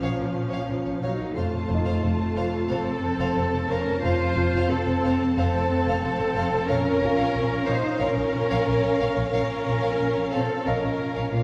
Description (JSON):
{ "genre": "cinematic, suspense film score", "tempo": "90 BPM", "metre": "4/4", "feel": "straight", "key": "Bb harmonic minor", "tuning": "A4 = 441 Hz", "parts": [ { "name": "dark symphonic violin section", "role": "melody", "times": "0.0-11.4 s", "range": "F5 to A5", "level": "-42 LUFS", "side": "equal", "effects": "none" }, { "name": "rich chamber violin section", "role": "second line", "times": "0.0-11.4 s", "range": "A4 to F5", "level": "-34 LUFS", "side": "equal", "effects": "none" }, { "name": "warm symphonic viola section", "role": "accompaniment", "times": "0.0-11.4 s", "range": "F3 to F4", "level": "-30 LUFS", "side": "equal", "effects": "none" }, { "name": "concert harp", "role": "riff", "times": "0.0-11.4 s", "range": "F2 to Bb2", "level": "-32 LUFS", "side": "equal", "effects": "none" }, { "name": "dark chamber double bass section", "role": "bass", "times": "0.0-11.4 s", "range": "F1 to Bb1", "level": "-34 LUFS", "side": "equal", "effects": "none" }, { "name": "rich chamber cello section", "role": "bass", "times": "0.0-11.4 s", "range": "Db4 to C5", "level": "-30 LUFS", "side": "equal", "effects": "none" }, { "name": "warm grand piano", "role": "texture", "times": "0.0-11.4 s", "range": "Eb4 to F5", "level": "-39 LUFS", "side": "equal", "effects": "none" } ], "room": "wet scoring stage reverb, RT60 1.8 s", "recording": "heard from further back in the room", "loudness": "-24 LUFS", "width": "mono", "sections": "0.0-11.4 A section", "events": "none", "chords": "0.0 Bbm; 1.4 F; 6.7 Bbm", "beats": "0.02 0.69 | 1.36 2.03 2.69 3.36 | 4.03 4.70 5.37 6.03 | 6.69 7.35 8.02 8.68 | 9.34 10.00 10.67 11.34" }